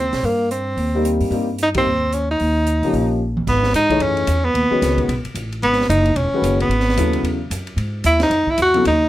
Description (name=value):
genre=modal jazz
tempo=223 BPM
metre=4/4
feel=swing 60% on 8ths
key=C phrygian, G# phrygian from 3.5 s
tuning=A4 = 440 Hz
part: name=warm tenor saxophone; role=melody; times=0.0-9.1 s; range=Bb3 to F#4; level=-18 LUFS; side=equal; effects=none
part: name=upright bass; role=bass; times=0.0-9.1 s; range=E1 to G#2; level=-21 LUFS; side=equal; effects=none
part: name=open jazz drum kit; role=drums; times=0.1-8.9 s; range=crash cymbal, hi-hat, kick drum, ride cymbal, snare drum, toms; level=-28 LUFS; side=right 1 dB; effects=none
part: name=warm upright piano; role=accompaniment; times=0.9-8.8 s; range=C#3 to C#5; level=-21 LUFS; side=left 3 dB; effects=none
room=moderate small room reverb, RT60 0.5 s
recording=none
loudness=-16 LUFS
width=side -14 dB against mid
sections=0.0-3.5 A section; 3.5-9.1 B section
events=band accent 1.7; drum fill 3.2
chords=0.0 Cm7; 2.4 Eb7; 3.5 G#m7; 5.6 Eadd9; 7.8 G#7(no3)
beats=| 0.23 0.50 0.77 1.04 | 1.31 1.58 1.85 2.12 | 2.39 2.66 2.93 3.20 | 3.47 3.74 4.00 4.27 | 4.54 4.81 5.08 5.35 | 5.62 5.89 6.16 6.42 | 6.69 6.96 7.23 7.50 | 7.77 8.04 8.31 8.58 | 8.85